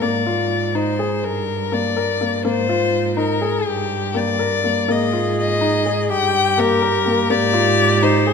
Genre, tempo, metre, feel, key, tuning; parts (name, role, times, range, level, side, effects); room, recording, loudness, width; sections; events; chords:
contemporary instrumental, chamber music in an uneven meter; 247 BPM (eighths); 5/8; straight; Ab lydian; A4 = 440 Hz
dark violin; melody; 0.0-8.3 s; G4 to G5; -20 LUFS; left 6 dB
felt-muted upright piano; arpeggios; 0.0-8.3 s; Bb3 to Bb4; -21 LUFS; left 2 dB
rich cello; bass; 0.0-8.3 s; G2 to Ab2; -24 LUFS; right 6 dB
clear clarinet; second line; 4.9-8.3 s; G4 to Ab4; -22 LUFS; right 1 dB
moderate concert hall reverb, RT60 2.6 s; -16 LUFS; side -6 dB against mid
0.0-8.3 A section
0.0 Absus2; 1.2 Gm; 2.4 Absus2; 3.6 Gm; 4.9 Absus2; 6.1 Gm; 7.3 Absus2